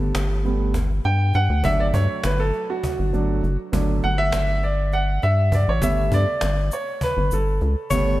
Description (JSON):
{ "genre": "progressive instrumental, band music in an uneven meter", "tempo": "201 BPM (eighths)", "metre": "7/8", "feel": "straight", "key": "G lydian", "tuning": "A4 = 442 Hz", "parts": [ { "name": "warm baby grand piano", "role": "accompaniment", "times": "0.0-8.2 s", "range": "F#3 to G5", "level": "-23 LUFS", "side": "right 2 dB", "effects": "none" }, { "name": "rubbery square bass", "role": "bass", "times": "0.0-8.2 s", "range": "F#1 to G2", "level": "-20 LUFS", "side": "equal", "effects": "none" }, { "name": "cajon", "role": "drums", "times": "0.1-8.0 s", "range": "none", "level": "-30 LUFS", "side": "equal", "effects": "none" }, { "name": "tube shaker", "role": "percussion", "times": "5.8-8.2 s", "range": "none", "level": "-38 LUFS", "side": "left 6 dB", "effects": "none" }, { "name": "breathy alto saxophone", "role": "second line", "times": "7.9-8.2 s", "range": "C#5", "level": "-22 LUFS", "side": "left 2 dB", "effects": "none" } ], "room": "light reverb, small room reverb", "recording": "bright 1980s-style digital production", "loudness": "-19 LUFS", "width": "side -16 dB against mid", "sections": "0.0-8.2 A section", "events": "grand piano solo 0.0-8.2", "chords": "0.0 Gadd9; 1.6 D; 5.8 Gadd9", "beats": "0.15 0.45 0.75 1.04 1.34 | 1.64 1.94 2.24 2.54 2.84 3.14 3.44 | 3.73 4.03 4.33 4.63 4.93 5.23 5.53 | 5.83 6.12 6.42 6.72 7.02 7.32 7.62 | 7.92" }